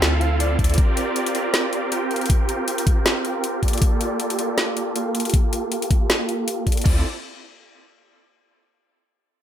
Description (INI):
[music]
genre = future bass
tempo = 158 BPM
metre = 4/4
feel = swing 56% on 16ths, half-time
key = D minor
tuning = A4 = 439 Hz
[part]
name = dark grand piano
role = melody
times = 0.0-0.5 s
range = D5 to F5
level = -31 LUFS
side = right 2 dB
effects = sidechain pumping, ping-pong delay
[part]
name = supersaw chords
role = riff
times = 0.0-7.0 s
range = Bb3 to G5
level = -24 LUFS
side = right 1 dB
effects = sidechain pumping, low-pass filter, tape echo
[part]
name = warm 808-style bass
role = bass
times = 0.0-0.8, 6.9-7.0 s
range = D2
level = -20 LUFS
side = equal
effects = sidechain pumping
[part]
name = trap drum kit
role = drums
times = 0.0-6.9 s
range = crash cymbal, hi-hat, snare drum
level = -24 LUFS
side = left 1 dB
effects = none
[part]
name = electronic kick drum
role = drums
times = 0.6-6.9 s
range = none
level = -18 LUFS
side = equal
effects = none
[sound]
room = light reverb, digital ambience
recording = none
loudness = -19 LUFS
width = side -10 dB against mid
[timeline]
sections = 0.0-6.9 A section; 6.9-8.4 B section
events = filter sweep on supersaw synth 0.0-6.9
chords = 0.0 Dm9; 0.8 Bb69; 3.6 Gm9; 6.9 Dm9